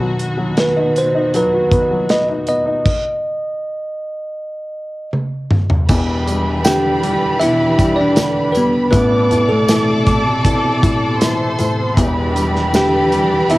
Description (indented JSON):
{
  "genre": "pop ballad",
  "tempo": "79 BPM",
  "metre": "4/4",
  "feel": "straight",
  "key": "E minor",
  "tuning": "A4 = 436 Hz",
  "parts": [
    { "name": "warm baby grand piano", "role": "accompaniment", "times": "0.0-13.6 s", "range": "E1 to F#4", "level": "-19 LUFS", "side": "left 1 dB", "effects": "cassette tape" },
    { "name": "warm studio string section", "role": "sustained chords", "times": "0.0-13.6 s", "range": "B2 to A4", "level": "-21 LUFS", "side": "equal", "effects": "cassette tape" },
    { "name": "modern studio drum kit", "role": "drums", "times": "0.2-13.6 s", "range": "crash cymbal, hi-hat, kick drum, snare drum, toms", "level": "-18 LUFS", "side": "equal", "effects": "cassette tape" },
    { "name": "bell-like tine electric piano", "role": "melody", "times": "0.6-13.6 s", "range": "A3 to G5", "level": "-16 LUFS", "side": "equal", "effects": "cassette tape" },
    { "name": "warm studio violin section", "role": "second line", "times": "5.9-13.6 s", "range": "B4 to D6", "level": "-22 LUFS", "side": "right 1 dB", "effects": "cassette tape, analog delay" },
    { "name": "tambourine", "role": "percussion", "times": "5.9-13.6 s", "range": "none", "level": "-32 LUFS", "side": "right 4 dB", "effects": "none" }
  ],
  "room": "small room ambience",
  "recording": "home recording on cassette",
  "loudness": "-13 LUFS",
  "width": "side -18 dB against mid",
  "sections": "0.0-5.9 A section; 5.9-13.6 B section",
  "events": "stop 2.9-5.9; drum fill 5.1-5.9",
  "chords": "0.0 B; 5.9 Em7; 8.9 Amadd9; 12.0 Em7"
}